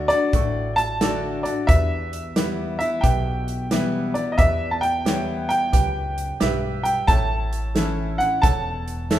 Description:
honky-tonk and classic country; 89 BPM; 4/4; swing 66% on 8ths; A4 = 440 Hz
warm upright piano; melody; 0.0-9.2 s; D5 to A5; -24 LUFS; equal
clear grand piano; accompaniment; 0.0-9.2 s; F#4 to C#6; -31 LUFS; right 6 dB
picked steel-string acoustic guitar; accompaniment; 0.0-9.2 s; E2 to F#4; -28 LUFS; left 3 dB
upright bass; bass; 0.0-9.2 s; E1 to E2; -27 LUFS; equal
natural country drum kit; drums; 0.1-9.2 s; hi-hat, kick drum, snare drum; -22 LUFS; equal
moderate recital hall reverb, RT60 1.9 s; minimal, uncompressed stereo recording; -19 LUFS; side -12 dB against mid
0.0-9.2 A section
0.0 D; 1.7 Em; 7.1 A

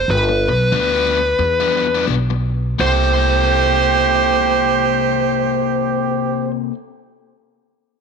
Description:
electric blues shuffle; 81-95 BPM; 4/4; swing 63% on 8ths; C mixolydian; A4 = 440 Hz
smooth overdriven lead guitar; melody; 0.0-6.5 s; B4 to C5; -18 LUFS; right 1 dB; slapback echo
upright bass; bass; 0.0-6.7 s; G1 to E2; -21 LUFS; right 1 dB
biting overdriven guitar; riff; 0.3-6.7 s; G2 to A4; -21 LUFS; left 14 dB; spring reverb
warm harmonica; second line; 2.8-6.5 s; G4; -19 LUFS; right 13 dB; overdrive
light reverb, studio reverb; 1960s-style stereo with parts hard left and right; -14 LUFS; side -5 dB against mid
0.0-2.8 A section; 2.8-5.7 B section
slowing down 0.0-2.8
0.1 G7; 2.8 C6

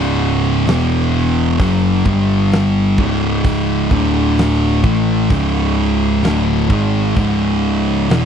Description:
stoner and doom metal; 65 BPM; 4/4; straight; C# minor; A4 = 440 Hz
thick fuzz guitar; riff; 0.0-8.3 s; C#2 to A3; -17 LUFS; left 10 dB; distortion
thick fuzz guitar; riff; 0.0-8.3 s; C#2 to A3; -18 LUFS; right 11 dB; distortion
overdriven picked electric bass; bass; 0.0-8.3 s; C#1 to A1; -19 LUFS; equal
big rock drum kit; drums; 0.0-8.3 s; hi-hat, kick drum, snare drum; -17 LUFS; equal
small room ambience; dry, close 1970s-style studio recording; -13 LUFS; side -8 dB against mid
0.0-8.3 A section
0.0 C#5; 0.7 E5; 1.6 F#5; 2.1 G5; 3.0 C#5; 3.9 D5; 4.9 C#m

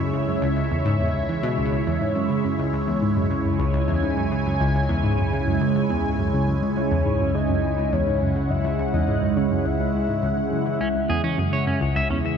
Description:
ambient, sequencer-driven space music; 104 BPM; 4/4; straight; C# minor; A4 = 438 Hz
phased analog pad; sustained chords; 0.0-12.4 s; C#3 to G#5; -23 LUFS; right 1 dB; phaser, chorus
analog pluck; riff; 0.0-12.3 s; C#2 to E3; -24 LUFS; left 1 dB; chorus, ping-pong delay
round analog bass; bass; 0.0-12.4 s; C#2; -33 LUFS; equal
soft octave-layered synth lead; melody; 6.8-11.2 s; C#5 to E5; -29 LUFS; left 2 dB; chorus, phaser, ping-pong delay
clean electric guitar; arpeggios; 10.8-12.2 s; C#4 to E5; -26 LUFS; right 2 dB; auto-pan, ping-pong delay
moderate huge ambient reverb, RT60 9.1 s; cassette tape; -20 LUFS; side -7 dB against mid
0.0-12.4 A section
fade-in on analog synth bass 0.0-12.4
0.0 C#m

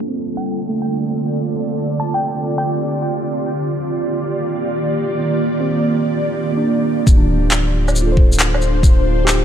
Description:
future garage; 136 BPM; 4/4; swing 67% on 16ths; D phrygian; A4 = 440 Hz
mellow tine electric piano; accompaniment; 0.0-9.4 s; A3 to C5; -23 LUFS; right 5 dB; sidechain pumping, tape echo
ethereal airy pad; sustained chords; 0.0-9.4 s; D3 to D5; -19 LUFS; right 1 dB; ensemble chorus, built-in reverb, sidechain pumping
glassy wavetable pluck; melody; 0.4-3.0 s; G5 to A5; -26 LUFS; left 1 dB; chorus, cassette tape, analog delay
warm sub bass; bass; 7.1-9.4 s; D1; -17 LUFS; equal; sidechain pumping
electronic kick drum; drums; 7.1-9.0 s; -11 LUFS; equal
electronic shaker, handclaps and woodblock; drums; 7.1-9.4 s; -19 LUFS; equal; overdrive
moderate scoring stage reverb, RT60 2.1 s; low-pass filter; -15 LUFS; side -9 dB against mid
0.0-7.1 A section; 7.1-9.4 B section
filter sweep 0.0-7.1
0.0 Dm7; 3.5 Ebmaj7; 7.1 Dm7

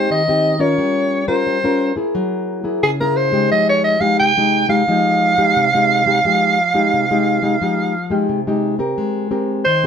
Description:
samba; 88 BPM; 4/4; straight; F minor; A4 = 444 Hz
growling soprano saxophone; melody; 0.0-9.9 s; Ab4 to G5; -15 LUFS; right 1 dB; plate reverb
nylon-string guitar; accompaniment; 0.0-9.9 s; C3 to Bb4; -18 LUFS; left 2 dB
moderate studio reverb, RT60 0.6 s; close, detailed microphones; -14 LUFS; side -7 dB against mid
0.0-9.0 A section
0.0 Abmaj7 (rootless); 0.8 Gm7b5; 2.1 Gb9; 3.5 Fm9; 9.0 Abmaj9

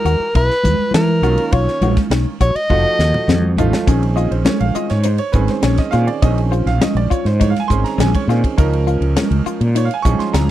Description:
electric jazz fusion; 102 BPM; 4/4; straight; Bb minor from 3.9 s; A4 = 441 Hz
clear soprano saxophone; melody; 0.0-3.6 s; Bb4 to D#5; -18 LUFS; equal; slapback echo
clear grand piano; accompaniment; 0.0-10.5 s; D#3 to Db6; -22 LUFS; right 6 dB
mellow fretless electric bass; bass; 0.0-10.5 s; F1 to E3; -16 LUFS; equal
congas; percussion; 0.0-10.5 s; -23 LUFS; right 1 dB
semi-hollow electric guitar; stabs; 0.1-10.5 s; C4 to F#4; -24 LUFS; left 11 dB; lush chorus
tight funk drum kit; drums; 0.1-10.5 s; hi-hat, kick drum, ride cymbal, snare drum, toms; -19 LUFS; equal
little or no reverb; dry, close 1970s-style studio recording; -13 LUFS; side -13 dB against mid
0.0-3.9 A section; 3.9-10.5 B section
drum fill 2.7-3.9
0.0 Emaj9; 1.2 Bmaj9#11; 2.7 F7b9; 3.9 Bbm11; 8.6 Db69

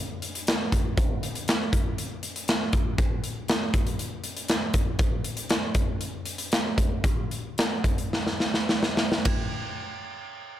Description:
rock; 102-120 BPM; 4/4; straight
big rock drum kit; drums; 0.2-9.4 s; hi-hat, kick drum, ride cymbal, snare drum; -24 LUFS; equal
light reverb; -24 LUFS; side -12 dB against mid
0.0-9.3 A section; 9.3-10.6 B section
slowing down 5.0-9.3; drum fill 8.1-9.3

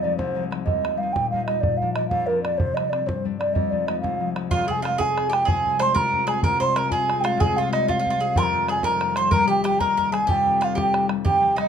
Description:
celtic folk, Celtic slide; 125 BPM (dotted quarters); 12/8; straight; F dorian; A4 = 445 Hz
mellow hollow wooden flute; melody; 0.0-11.7 s; Bb4 to C6; -22 LUFS; right 1 dB
concert harp; accompaniment; 0.0-11.7 s; F1 to F4; -27 LUFS; left 6 dB
bodhran; percussion; 0.2-11.6 s; -26 LUFS; right 1 dB
Irish bouzouki; second line; 4.5-11.7 s; Eb4 to C5; -26 LUFS; right 4 dB
moderate studio reverb, RT60 0.5 s; minimal, uncompressed stereo recording; -20 LUFS; side -8 dB against mid
0.0-4.5 A section; 4.5-11.7 B section
0.0 Fm7; 0.7 Eb; 1.6 Bb; 2.6 Csus2; 3.6 Fm7; 4.5 Fm; 8.4 Eb/F

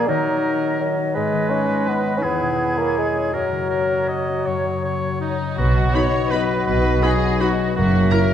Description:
classical, orchestral ballroom waltz; 164 BPM; 3/4; uneven beats, rubato; B major; A4 = 443 Hz
clear clarinet; second line; 0.0-8.3 s; G#3 to F#4; -26 LUFS; left 1 dB
clear oboe; second line; 0.0-8.3 s; D#4 to D#5; -26 LUFS; right 2 dB
hollow small flute group; second line; 0.0-8.3 s; C#5 to E5; -30 LUFS; left 5 dB
warm bassoon; accompaniment; 0.0-8.3 s; F#3 to C#4; -24 LUFS; right 2 dB
concert harp; arpeggios; 0.0-8.3 s; E2 to C#5; -25 LUFS; left 7 dB
rich chamber violin section; second line; 5.2-8.3 s; D#4 to C#5; -27 LUFS; left 3 dB
rich studio double bass section; bass; 5.6-8.1 s; F#1 to B1; -21 LUFS; right 2 dB
warm chamber cello section; bass; 5.6-8.1 s; F#2 to B2; -24 LUFS; right 2 dB
clear chamber violin section; melody; 5.9-8.2 s; A#5 to B5; -32 LUFS; equal
mellow French horn section; sustained chords; 5.9-8.3 s; A#3 to E4; -29 LUFS; left 3 dB
rich studio viola section; accompaniment; 6.0-8.2 s; D#4 to F#4; -29 LUFS; right 1 dB
wet scoring stage reverb, RT60 1.9 s; dark, warm production; -18 LUFS; side -9 dB against mid
0.0-5.6 A section; 5.6-8.3 A section
0.1 D#m; 1.1 G#m; 2.2 C#m7/E; 3.3 F#; 5.6 B; 7.8 F#7

